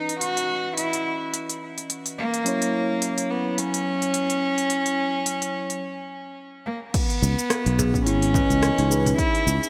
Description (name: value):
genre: organic downtempo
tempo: 107 BPM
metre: 4/4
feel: swing 56% on 16ths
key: C# dorian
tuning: A4 = 436 Hz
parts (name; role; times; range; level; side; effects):
- rich cello; melody; 0.0-9.7 s; A#3 to F#4; -28 LUFS; equal; delay, slapback echo
- muted felt-like synth keys; accompaniment; 0.0-9.1 s; E3 to D#5; -32 LUFS; equal; chorus, sidechain pumping, digital delay, slapback echo
- organic electronic drum kit; drums; 0.1-9.7 s; crash cymbal, hi-hat, rim click, shaker; -30 LUFS; equal; overdrive
- electronic kick drum; drums; 6.9-9.3 s; none; -28 LUFS; equal; overdrive
- sustaining fretless electric bass; bass; 7.2-9.6 s; G#1 to C#2; -25 LUFS; equal; none
- cajon; percussion; 7.2-9.2 s; none; -32 LUFS; equal; none
- steel tongue drum; arpeggios; 7.5-9.6 s; B3 to G#4; -29 LUFS; equal; digital delay
room: moderate lush hall reverb, RT60 2.0 s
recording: big arena sound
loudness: -24 LUFS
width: mono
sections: 0.0-6.9 A section; 6.9-9.7 B section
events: break 5.8-6.9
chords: 0.0 C#m9; 2.5 F#5; 6.9 C#m9